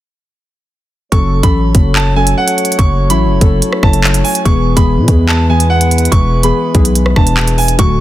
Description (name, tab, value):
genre	hip hop, drill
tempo	144 BPM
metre	4/4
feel	half-time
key	F# minor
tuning	A4 = 440 Hz
part	bright upright piano	melody	1.1-8.0 s	F#5 to C#6	-18 LUFS	right 4 dB	ping-pong delay
part	muted felt-like synth keys	accompaniment	1.1-8.0 s	D3 to A4	-17 LUFS	left 4 dB	chorus
part	mellow brass ensemble	sustained chords	1.1-8.0 s	F#3 to C#5	-22 LUFS	right 1 dB	none
part	growling 808-style bass	bass	1.1-8.0 s	D1 to B2	-13 LUFS	equal	none
part	drill drum kit	drums	1.1-7.9 s	handclaps, hi-hat, kick drum, rim click	-12 LUFS	equal	none
room	little or no reverb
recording	dense, heavily limited modern master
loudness	-9 LUFS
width	side -14 dB against mid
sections	1.1-8.0 A section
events	none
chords	1.1 F#m; 4.5 E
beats	| 1.12 1.54 1.96 2.37 | 2.79 3.21 3.62 4.04 | 4.46 4.87 5.29 5.71 | 6.12 6.54 6.96 7.37 | 7.79